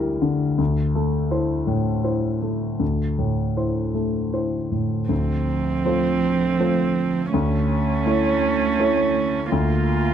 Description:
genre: neoclassical piano and strings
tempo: 82 BPM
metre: 3/4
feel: rubato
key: D minor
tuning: A4 = 440 Hz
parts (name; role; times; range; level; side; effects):
- warm concert grand piano; accompaniment; 0.0-10.1 s; D2 to C#5; -21 LUFS; left 1 dB; none
- warm cello; second line; 5.1-10.1 s; F3 to Bb3; -25 LUFS; right 6 dB; none
- rich viola; accompaniment; 5.1-10.1 s; C4 to F4; -24 LUFS; right 4 dB; none
room: light reverb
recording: dark, warm production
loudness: -19 LUFS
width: side -9 dB against mid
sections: 0.0-5.1 A section; 5.1-10.1 A section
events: none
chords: 0.0 Em7b5/D; 0.6 Am/D; 5.1 Dm7; 7.3 A/D; 9.5 C7sus4/D (rootless)

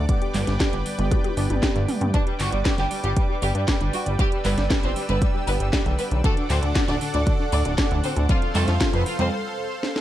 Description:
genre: italo disco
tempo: 117 BPM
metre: 4/4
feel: straight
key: unclear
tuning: A4 = 440 Hz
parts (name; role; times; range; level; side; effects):
- lush unison pad; sustained chords; 0.0-10.0 s; A4 to E6; -31 LUFS; equal; chorus
- analog synth brass; stabs; 0.0-9.3 s; B3 to G5; -33 LUFS; right 4 dB; chorus, ping-pong delay
- chorused synth bass; bass; 0.0-9.3 s; D1 to G2; -24 LUFS; equal; none
- soft round pluck; arpeggios; 0.1-9.2 s; A2 to G4; -34 LUFS; left 1 dB; chorus, ping-pong delay
- electronic kick drum; drums; 0.1-8.9 s; none; -23 LUFS; equal; studio reverb
- house drum kit; drums; 0.1-10.0 s; congas, handclaps, hi-hat, snare drum, toms; -27 LUFS; equal; studio reverb
- rich studio violin section; melody; 2.1-9.3 s; G3 to D5; -28 LUFS; equal; tape echo
room: light reverb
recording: none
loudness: -20 LUFS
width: side -13 dB against mid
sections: 0.0-2.1 A section; 2.1-10.0 B section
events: drum fill 1.1-2.1, 9.8; filter sweep on synth arpeggio sound 2.1-10.0; break 9.3-10.0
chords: 0.1 G; 6.2 D; 8.3 F

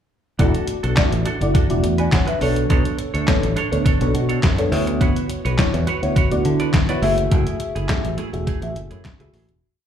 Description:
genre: early-eighties boogie funk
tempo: 104 BPM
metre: 4/4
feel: straight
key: unclear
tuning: A4 = 440 Hz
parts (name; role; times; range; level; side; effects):
- FM electric piano with soft pad layer; accompaniment; 0.4-9.5 s; A3 to G#5; -23 LUFS; left 1 dB; chorus, phaser, slapback echo
- semi-hollow electric guitar; riff; 0.4-9.5 s; A3 to D5; -28 LUFS; right 7 dB; wide subtle chorus, slapback echo
- fingered electric bass; bass; 0.4-9.6 s; E1 to D3; -21 LUFS; equal; none
- detuned 8-bit digital drum machine; drums; 0.4-9.6 s; handclaps, hi-hat, kick drum, snare drum; -19 LUFS; equal; overdrive
room: digital ambience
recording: live gig heard through the venue's PA, club reverb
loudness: -17 LUFS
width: side -9 dB against mid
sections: 0.4-9.6 verse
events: fade-out 7.3-9.6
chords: 0.4 E9sus4; 2.4 Bm9; 4.7 Dmaj13; 7.0 F#m9

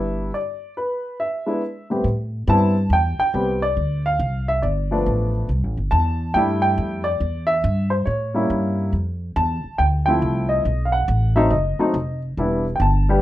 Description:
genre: jazz piano trio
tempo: 139 BPM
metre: 4/4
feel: swing 64% on 8ths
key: A minor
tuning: A4 = 439 Hz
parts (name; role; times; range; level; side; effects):
- warm baby grand piano; melody; 0.0-13.2 s; A2 to A5; -21 LUFS; equal; none
- upright bass; bass; 0.0-13.2 s; E1 to A2; -21 LUFS; equal; none
room: moderate club reverb, RT60 0.5 s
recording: dark, warm production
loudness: -18 LUFS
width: side -14 dB against mid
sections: 0.0-2.1 A section; 2.1-13.2 B section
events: none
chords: 0.3 N.C.; 1.2 E5; 2.1 Am9; 3.8 Dm7; 4.6 G9; 5.5 C69 (rootless); 7.2 Em7; 8.1 A7b9; 8.9 Dm9; 10.7 B7; 12.4 Em7

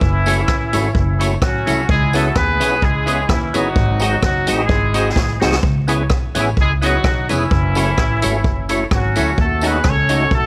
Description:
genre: ska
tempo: 128 BPM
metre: 4/4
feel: swing 54% on 8ths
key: C# minor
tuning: A4 = 440 Hz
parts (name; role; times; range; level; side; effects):
- clear horn section; melody; 0.0-10.5 s; E3 to C#5; -22 LUFS; equal; none
- upright bass; bass; 0.0-10.5 s; E#1 to D#2; -22 LUFS; equal; none
- swinging big-band drum kit; drums; 0.0-10.4 s; hi-hat, kick drum, rim click, snare drum; -21 LUFS; equal; none
- electric guitar at the edge of break-up; accompaniment; 0.3-10.2 s; D#4 to C#5; -28 LUFS; equal; spring reverb
- percussive tonewheel organ; stabs; 0.3-10.2 s; A3 to G#4; -26 LUFS; equal; overdrive, chorus vibrato, slow rotary speaker
- tambourine; percussion; 0.3-10.2 s; none; -36 LUFS; equal; none
room: light reverb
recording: none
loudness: -17 LUFS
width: mono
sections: 0.0-10.5 A section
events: drum fill 5.2-5.6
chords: 0.0 F#m7; 1.9 C#m7; 3.8 G#7; 5.6 C#m7; 7.5 F#m7; 9.4 D#m7b5

